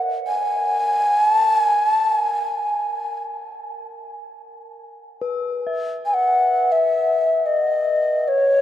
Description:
world meditative, free-time meditation music; free time; A4 = 437 Hz
bronze singing bowl; texture; 0.0-8.6 s; A#4 to E5; -30 LUFS; left 3 dB
mellow hollow Native American-style cedar flute; melody; 0.3-8.6 s; C#5 to G#5; -18 LUFS; left 1 dB
wet cathedral reverb, RT60 6.8 s; dark, warm production; -17 LUFS; side -12 dB against mid
0.0-8.6 A section

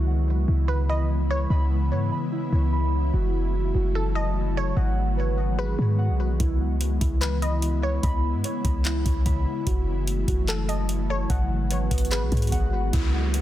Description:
hip hop, atmospheric cloud-rap; 147 BPM; 4/4; half-time; C# minor; A4 = 439 Hz
ethereal airy pad; sustained chords; 0.0-13.4 s; C#3 to F#4; -30 LUFS; left 1 dB; ensemble chorus, built-in reverb, sidechain pumping
muted felt-like synth keys; arpeggios; 0.0-13.4 s; E4 to B5; -33 LUFS; right 4 dB; chorus, phaser, digital delay
clean 808-style bass; bass; 0.0-13.4 s; F#1 to G#2; -24 LUFS; equal
glassy wavetable pluck; melody; 0.7-1.5, 4.0-8.0, 10.5-12.9 s; A4 to D#5; -34 LUFS; equal; chorus, digital delay
booming analog drum machine; drums; 6.4-13.4 s; handclaps, hi-hat, kick drum; -25 LUFS; equal
downlifter; sound effects; 12.9-13.4 s; -32 LUFS; left 1 dB
digital ambience; dense, heavily limited modern master; -22 LUFS; side -13 dB against mid
0.0-12.9 A section
0.0 C#m7; 3.1 F#m7; 4.8 G#m7; 6.4 C#m7; 9.7 F#m7; 11.3 G#m7

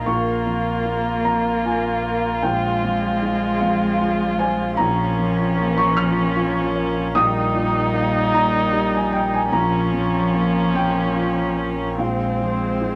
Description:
neoclassical piano and strings; 51 BPM (dotted quarters); 6/8; rubato; Bb dorian; A4 = 440 Hz
muted cello; second line; 0.0-13.0 s; F3 to Bb3; -26 LUFS; equal
felt-muted upright piano; accompaniment; 0.0-13.0 s; Bb1 to F6; -24 LUFS; equal
muted viola; accompaniment; 0.0-13.0 s; C4 to F4; -27 LUFS; equal
pedal harmonium; sustained chords; 0.0-13.0 s; Ab3 to Eb5; -30 LUFS; equal
saturated sub bass; bass; 0.0-13.0 s; Bb1; -38 LUFS; equal
wet small room reverb, RT60 0.5 s; -20 LUFS; mono
0.0-13.0 A section
0.1 Bbm; 2.4 Fm/Bb; 4.8 Bbm; 7.2 Eb/Bb; 9.5 Bbm; 12.0 Fm/Bb

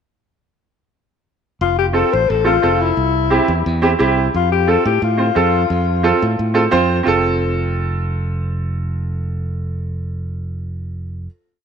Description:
latin; 176 BPM; 4/4; straight; F major; A4 = 441 Hz
warm alto saxophone; melody; 1.6-6.7 s; E4 to C5; -18 LUFS; left 9 dB
modern bright fingered electric bass; bass; 1.6-11.3 s; F1 to A2; -20 LUFS; right 1 dB
clear upright piano; accompaniment; 1.9-11.3 s; C4 to C5; -17 LUFS; right 3 dB
moderate echo chamber reverb, RT60 2.2 s; -15 LUFS; side -7 dB against mid
1.6-7.1 A section; 7.1-9.8 final chord
1.6 F; 3.0 C; 4.3 F

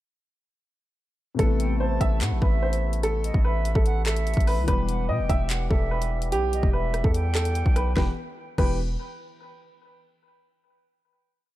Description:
hip hop, drill; 146 BPM; 4/4; half-time; E minor; A4 = 440 Hz
dark concert grand piano; accompaniment; 1.3-8.8 s; C3 to B4; -34 LUFS; left 5 dB
warm upright piano; melody; 1.4-8.8 s; G4 to E5; -30 LUFS; right 1 dB; tape echo
mellow accordion; sustained chords; 1.4-8.2 s; C3 to G4; -38 LUFS; left 4 dB
distorted 808-style bass; bass; 1.4-9.0 s; E1 to B2; -25 LUFS; equal; distortion
drill drum kit; drums; 1.4-8.7 s; crash cymbal, handclaps, hi-hat, kick drum, rim click, snare drum; -24 LUFS; equal
silver concert flute; second line; 1.6-8.8 s; D#5 to A5; -35 LUFS; right 4 dB; tape echo
studio reverb; dark, warm production; -22 LUFS; side -15 dB against mid
1.4-8.0 hook; 8.0-9.6 final chord
1.4 Amadd9; 4.7 Em

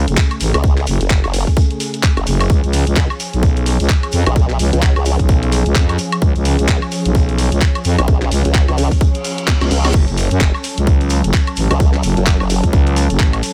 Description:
bass house; 129 BPM; 4/4; swing 59% on 16ths; F# harmonic minor; A4 = 440 Hz
dark studio string section; sustained chords; 0.0-13.5 s; C#3 to A4; -26 LUFS; equal; sidechain pumping, low-pass filter
growling FM bass; bass; 0.0-13.4 s; F#1 to F#2; -18 LUFS; equal; overdrive, sidechain pumping
garage drum kit; drums; 0.1-13.5 s; crash cymbal, handclaps, hi-hat, snare drum, woodblock; -24 LUFS; equal; studio reverb
shekere; percussion; 0.1-13.5 s; -33 LUFS; equal
electronic kick drum; drums; 0.2-13.3 s; -16 LUFS; equal; studio reverb
formant-sweep wobble bass; bass; 0.5-12.6 s; F#1 to C#2; -19 LUFS; equal; chorus, overdrive, sidechain pumping
reverse cymbal; sound effects; 9.1-9.9 s; -30 LUFS; equal
little or no reverb; -15 LUFS; mono
0.0-13.5 A section
reverse cymbal 9.1-9.9; drum fill 9.5-9.9
0.0 F#m; 2.5 C#; 9.9 F#m

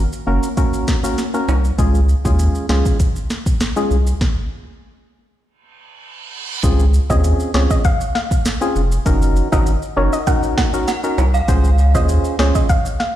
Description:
dancehall; 99 BPM; 4/4; straight; A4 = 439 Hz
percussive organ stab; accompaniment; 0.0-12.7 s; Ab3 to C5; -21 LUFS; equal; chorus
saturated sub bass; bass; 0.0-12.5 s; F1 to Eb2; -15 LUFS; equal
maracas and timbales; percussion; 0.1-13.0 s; -30 LUFS; right 6 dB
afro-pop drum kit; drums; 0.6-13.1 s; hi-hat, kick drum, snare drum; -18 LUFS; equal
reverse cymbal; sound effects; 5.9-6.6 s; -29 LUFS; right 6 dB
soft round pluck; melody; 7.1-13.1 s; Db5 to Gb5; -24 LUFS; equal; chorus, tape echo
synth chime; second line; 10.9-11.8 s; F5 to Gb5; -26 LUFS; right 5 dB; ensemble chorus, tape echo
little or no reverb; played on a big sound system in a bare room, stone room reverb; -14 LUFS; side -12 dB against mid
0.0-6.6 A section; 6.6-13.2 B section
stop 4.2-6.6; reverse cymbal 5.9-6.6
0.0 Gb; 1.8 Db; 6.6 Dbmaj7; 9.1 Gb6; 11.5 Dbmaj7

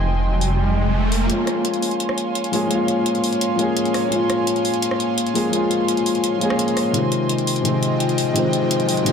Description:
liquid drum and bass; 170 BPM; 4/4; straight; Bb dorian; A4 = 440 Hz
dark grand piano; accompaniment; 0.0-9.1 s; C3 to Ab4; -20 LUFS; left 2 dB; analog delay
airy breathy pad; sustained chords; 0.0-9.1 s; Bb3 to C6; -25 LUFS; right 1 dB; chorus
dark detuned saw bass; bass; 0.0-1.3 s; F1; -19 LUFS; equal
riser; sound effects; 0.0-1.3, 8.2-9.1 s; -26 LUFS; right 2 dB
drum and bass drum kit; drums; 0.4-9.1 s; hi-hat, rim click; -26 LUFS; equal
light reverb; echo-heavy mix; -17 LUFS; side -6 dB against mid
0.0-1.3 A section; 1.3-9.1 B section
riser 0.0-1.3; filter sweep 0.0-1.3; build-up 1.3-9.1
0.0 Fm7; 1.3 Bbm7; 6.9 Fm7

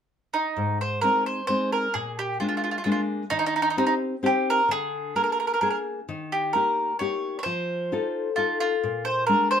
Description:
italian folk, Italian serenade; 131 BPM; 3/4; swing 54% on 8ths; Ab major; A4 = 440 Hz
bowl-back mandolin; melody; 0.3-9.6 s; Eb4 to Db5; -24 LUFS; right 1 dB
nylon-string guitar; accompaniment; 0.6-9.6 s; Ab2 to A4; -28 LUFS; left 3 dB
moderate small room reverb, RT60 0.5 s; minimal, uncompressed stereo recording; -23 LUFS; side -8 dB against mid
0.6-9.6 A section
0.0 N.C.; 0.6 Ab; 1.9 Bb7; 3.3 Eb6; 4.7 Bb7/D; 6.1 Eb; 7.5 F7; 8.8 Bb7

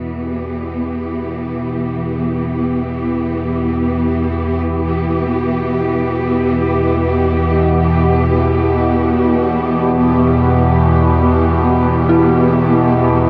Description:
dark ambient drone; free time; E minor; A4 = 440 Hz
dark symphonic cello section; sustained chords; 0.0-13.3 s; E3 to G4; -19 LUFS; equal; shimmer reverb
analog drone; drone; 0.0-13.3 s; E2 to B2; -18 LUFS; equal; chorus, phaser
dark detuned synth bell; arpeggios; 12.1-13.3 s; E4; -20 LUFS; equal; chorus, shimmer reverb
wet huge ambient reverb, RT60 8.7 s; worn, warbling old tape, cassette tape, warbly pitch drift; -15 LUFS; mono
0.0-13.3 A section
fade-in on synth drone 0.0-13.3; fade-in on cello section 0.0-13.3
0.0 Em

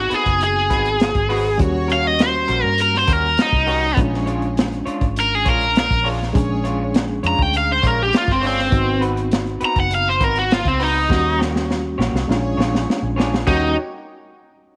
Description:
straight-eighth soul blues; 101 BPM; 4/4; straight; A4 = 440 Hz
cranked stack guitar; melody; 0.0-13.8 s; C4 to Bb5; -21 LUFS; equal; overdrive
overdriven reed electric piano; accompaniment; 0.0-13.7 s; G3 to Ab4; -28 LUFS; equal; fast tremolo
vintage muted fingered electric bass; bass; 0.0-13.7 s; Gb1 to G2; -26 LUFS; equal
electric guitar through a small old amp; stabs; 0.1-13.7 s; G3 to C#5; -32 LUFS; equal
crunchy breakbeat drum kit; drums; 0.1-13.6 s; crash cymbal, hi-hat, kick drum, snare drum; -23 LUFS; equal
rich studio string section; sustained chords; 1.3-13.8 s; C4 to Db5; -35 LUFS; equal
light reverb, small room ambience; -18 LUFS; mono
0.0-13.5 A section; 13.5-14.8 B section
drum fill 11.1-13.5
0.0 Ab7#9; 1.6 Eb7#9; 4.0 Bb7#9; 8.7 Ab7#9; 11.1 Eb7#9; 12.3 Bb7#9; 13.5 Eb7#9

